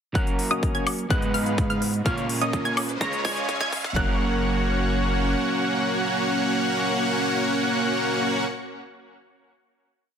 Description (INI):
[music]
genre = EDM, festival progressive house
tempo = 126 BPM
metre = 4/4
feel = straight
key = F# major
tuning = A4 = 441 Hz
[part]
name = electric guitar at the edge of break-up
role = accompaniment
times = 0.1-8.5 s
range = G#2 to C#5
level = -29 LUFS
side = right 2 dB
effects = vintage 12-bit sampler grit, sidechain pumping, tape echo
[part]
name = dense compressed supersaw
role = riff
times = 0.1-8.4 s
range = G#3 to A#5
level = -24 LUFS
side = equal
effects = sidechain pumping, low-pass filter, tape echo
[part]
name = wide unison pluck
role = arpeggios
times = 0.2-8.4 s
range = D#6 to A#6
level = -30 LUFS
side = equal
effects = sidechain pumping, tape echo
[part]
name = saturated sub bass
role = bass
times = 0.2-5.4 s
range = F#1 to G#2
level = -31 LUFS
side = equal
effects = sidechain pumping, high-pass filter
[part]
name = electronic hi-hat and woodblock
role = drums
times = 0.2-3.9 s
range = none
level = -31 LUFS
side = left 2 dB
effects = overdrive
[part]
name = electronic kick drum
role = drums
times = 0.2-4.1 s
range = none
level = -26 LUFS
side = equal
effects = overdrive
[part]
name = riser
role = sound effects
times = 1.9-4.0 s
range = none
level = -36 LUFS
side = right 1 dB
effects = none
[sound]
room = moderate digital room reverb, RT60 1.2 s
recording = dense, heavily limited modern master, high-pass filter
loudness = -21 LUFS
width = side -8 dB against mid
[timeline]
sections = 0.2-4.0 build; 4.0-7.8 final chord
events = build-up 0.2-4.0; filter sweep on supersaw synth 0.2-4.0; filter sweep on synth pluck 0.2-4.0; filter sweep 0.2-4.0; riser 1.9-4.0; drum fill 2.1-4.0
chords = 0.2 F#; 1.1 G#m; 2.1 A#m; 3.0 C#; 4.0 F#